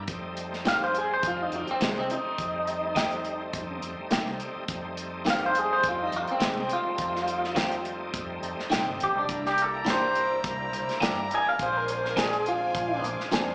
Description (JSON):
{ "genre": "straight-eighth soul blues", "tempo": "104 BPM", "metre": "4/4", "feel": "swing 53% on 16ths", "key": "F mixolydian", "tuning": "A4 = 441 Hz", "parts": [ { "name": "bright tonewheel organ", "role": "accompaniment", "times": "0.0-13.5 s", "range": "G3 to F4", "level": "-38 LUFS", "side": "equal", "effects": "overdrive, chorus vibrato, slow rotary speaker, slapback echo" }, { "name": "bright horn section", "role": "sustained chords", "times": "0.0-0.1, 9.3-13.5 s", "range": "C5 to Bb5", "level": "-37 LUFS", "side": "equal", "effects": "none" }, { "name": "vintage muted fingered electric bass", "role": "bass", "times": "0.0-13.5 s", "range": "G1 to G2", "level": "-43 LUFS", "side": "equal", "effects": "none" }, { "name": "warm soul drum kit", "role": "drums", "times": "0.1-13.5 s", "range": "hi-hat, kick drum, snare drum", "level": "-34 LUFS", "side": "equal", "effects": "none" }, { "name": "electric guitar through a small old amp", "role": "melody", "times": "0.7-13.0 s", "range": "Ab3 to Ab5", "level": "-29 LUFS", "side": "equal", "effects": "harmonic tremolo, slapback echo" }, { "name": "direct-recorded clean electric guitar", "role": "stabs", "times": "0.7-13.5 s", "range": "Eb3 to Ab4", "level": "-33 LUFS", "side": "equal", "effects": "phaser, slapback echo" } ], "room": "light reverb, studio reverb", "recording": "live gig heard through the venue's PA, club reverb, small speaker sound", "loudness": "-28 LUFS", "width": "mono", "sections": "0.1-13.5 A section", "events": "clean electric guitar solo 0.0-13.5", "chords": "0.1 F9; 9.3 C9; 11.6 Bb9" }